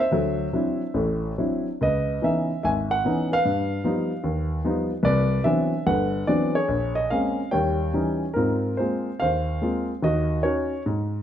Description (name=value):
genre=solo jazz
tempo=137-152 BPM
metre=4/4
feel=swing 65% on 8ths, rubato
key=unclear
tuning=A4 = 440 Hz
part: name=dark grand piano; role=solo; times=0.0-11.2 s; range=G1 to Ab5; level=-22 LUFS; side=equal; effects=none
room=moderate large studio reverb, RT60 1.2 s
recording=dark, warm production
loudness=-22 LUFS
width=side -10 dB against mid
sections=0.0-8.4 A section; 8.4-11.2 B section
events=none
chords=0.1 D9; 1.8 Dbm9; 3.4 Gaug7; 5.0 Cmaj9#11; 6.7 Bbm9; 7.5 Eb7b9; 8.4 Ab69; 10.0 Ebm7